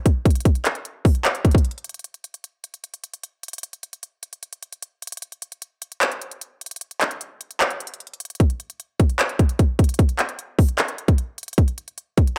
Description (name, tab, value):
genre	hip hop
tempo	151 BPM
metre	4/4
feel	half-time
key	none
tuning	none
part	trap drum kit	drums	0.1-12.4 s	handclaps, hi-hat, kick drum	-21 LUFS	equal	none
room	little or no reverb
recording	none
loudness	-21 LUFS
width	mono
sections	0.0-2.0 A section; 2.0-8.4 B section; 8.4-12.4 C section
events	none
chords	none